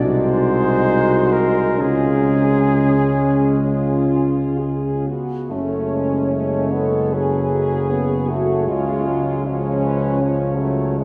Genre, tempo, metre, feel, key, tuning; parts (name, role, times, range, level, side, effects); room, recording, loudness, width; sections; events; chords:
classical, hymn-like piece for brass band; 61-80 BPM; 4/4; rubato; F# minor; A4 = 439 Hz
clear trombone; accompaniment; 0.0-11.0 s; E#3 to C#4; -28 LUFS; equal
mellow tuba; bass; 0.0-11.0 s; F#1 to C#2; -23 LUFS; equal
mellow flugelhorn; melody; 0.1-11.0 s; G#4 to C#5; -29 LUFS; equal
mellow French horn section; second line; 0.1-11.0 s; B3 to A4; -24 LUFS; equal
warm euphonium; accompaniment; 0.1-11.0 s; E#3 to D#4; -25 LUFS; equal
wet cathedral reverb, RT60 4.5 s; -19 LUFS; mono
0.0-5.5 A section; 5.5-11.0 B section
0.0 G#7/B#; 1.8 C#; 5.5 F#m; 8.7 C#